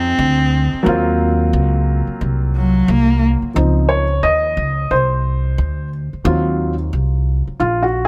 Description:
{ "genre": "hip hop, jazz-hop", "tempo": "89 BPM", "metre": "4/4", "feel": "swing 61% on 16ths", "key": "unclear", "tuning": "A4 = 440 Hz", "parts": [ { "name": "dark cello", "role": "melody", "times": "0.0-3.2 s", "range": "Gb3 to C4", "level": "-20 LUFS", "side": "equal", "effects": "none" }, { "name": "dark upright piano", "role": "accompaniment", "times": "0.0-8.1 s", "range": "F3 to Eb5", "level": "-21 LUFS", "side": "equal", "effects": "none" }, { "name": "upright bass", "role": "bass", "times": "0.0-8.1 s", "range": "Bb1 to F2", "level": "-20 LUFS", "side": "equal", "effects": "none" } ], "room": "light reverb, studio reverb", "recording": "none", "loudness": "-17 LUFS", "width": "mono", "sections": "0.0-3.6 A section; 3.6-8.1 A section", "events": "cello solo 0.0-3.6; upright piano solo 3.6-8.1", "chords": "0.0 Dbmaj9 (rootless); 0.9 Ebm69; 3.6 Dbmaj9; 6.2 Ebm69" }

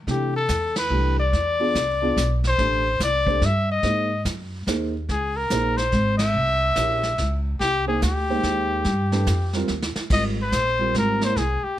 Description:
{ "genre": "jazz, small-group swing and bop", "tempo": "144 BPM", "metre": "3/4", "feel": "swing 64% on 8ths", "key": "unclear", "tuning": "A4 = 440 Hz", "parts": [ { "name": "upright bass", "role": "bass", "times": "0.0-11.7 s", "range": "Ab1 to C3", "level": "-24 LUFS", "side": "equal", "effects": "none" }, { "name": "clear trumpet", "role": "melody", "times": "0.1-11.8 s", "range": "G4 to E5", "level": "-23 LUFS", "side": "left 2 dB", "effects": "none" }, { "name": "dark concert grand piano", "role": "accompaniment", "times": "0.1-11.3 s", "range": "E3 to C5", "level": "-27 LUFS", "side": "right 2 dB", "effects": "none" }, { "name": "vintage brush drum kit", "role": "drums", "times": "0.1-11.8 s", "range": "brushed snare drum, crash cymbal, hi-hat, kick drum, ride cymbal, snare drum", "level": "-28 LUFS", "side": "right 1 dB", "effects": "none" } ], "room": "light reverb", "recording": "none", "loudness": "-20 LUFS", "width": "side -12 dB against mid", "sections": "0.1-10.1 A section; 10.1-11.8 B section", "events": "band accent 0.7, 6.1; drum fill 9.7-10.1", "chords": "0.1 Cmaj9; 1.3 E7b9; 2.6 Am7; 3.8 Ab9; 5.1 Dbsus2; 6.3 C7b9; 7.6 Abmaj9#11/C; 8.9 G9; 9.7 N.C.; 10.1 Abmaj9" }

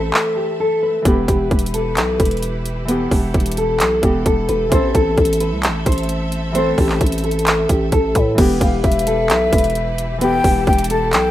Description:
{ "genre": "hip hop, trap", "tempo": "131 BPM", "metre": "4/4", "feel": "half-time", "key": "E minor", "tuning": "A4 = 440 Hz", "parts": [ { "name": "nylon-string guitar", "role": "melody", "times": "0.0-11.3 s", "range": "G4 to C5", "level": "-20 LUFS", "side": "left 1 dB", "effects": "low-pass filter" }, { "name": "Celtic harp", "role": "accompaniment", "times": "0.0-11.3 s", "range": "E3 to A4", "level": "-23 LUFS", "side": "left 1 dB", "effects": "low-pass filter" }, { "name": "bright symphonic string section", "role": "sustained chords", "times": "0.0-11.3 s", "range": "E3 to E5", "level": "-30 LUFS", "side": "right 1 dB", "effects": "none" }, { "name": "growling 808-style bass", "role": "bass", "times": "0.0-11.3 s", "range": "E1 to A2", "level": "-21 LUFS", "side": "equal", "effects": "none" }, { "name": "trap drum kit", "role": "drums", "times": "0.1-11.2 s", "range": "crash cymbal, handclaps, hi-hat, kick drum", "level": "-18 LUFS", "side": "equal", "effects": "none" }, { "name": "breathy jazz flute", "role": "second line", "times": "8.6-11.3 s", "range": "E5 to A5", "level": "-20 LUFS", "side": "left 3 dB", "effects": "digital delay" } ], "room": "light reverb", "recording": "rough home demo mix", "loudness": "-14 LUFS", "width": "side -13 dB against mid", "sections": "0.0-8.4 A section; 8.4-11.3 B section", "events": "break 0.0-1.1; kick muted 0.1-1.1", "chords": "0.0 Am; 1.1 Em; 4.7 Am; 8.4 Em" }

